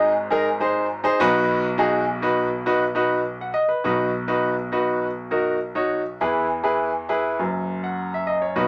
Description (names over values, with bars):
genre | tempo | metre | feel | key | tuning
soul | 102 BPM | 4/4 | straight | B major | A4 = 438 Hz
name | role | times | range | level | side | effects
clear baby grand piano | solo | 0.0-8.7 s | F#1 to F#5 | -22 LUFS | equal | none
room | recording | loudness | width
moderate studio reverb, RT60 0.7 s | none | -22 LUFS | mono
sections
0.0-3.8 A section; 3.8-8.7 B section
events
none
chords
0.0 G#; 1.2 B; 6.2 E; 7.4 N.C.